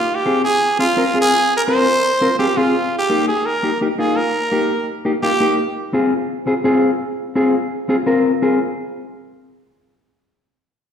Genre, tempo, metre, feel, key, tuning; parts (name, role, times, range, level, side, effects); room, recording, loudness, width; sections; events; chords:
latin; 169 BPM; 4/4; straight; F minor; A4 = 440 Hz
growling trumpet; melody; 0.0-5.6 s; F4 to C5; -17 LUFS; right 2 dB
mellow electric guitar; accompaniment; 0.3-8.6 s; Bb3 to Bb4; -18 LUFS; left 2 dB; warbly pitch drift
wet recital hall reverb, RT60 1.6 s; recorded in a church or concert hall; -15 LUFS; side -8 dB against mid
0.0-5.6 A section; 5.6-8.4 B section; 8.4-9.8 C section
0.0 Fm; 2.7 Eb; 5.6 Fm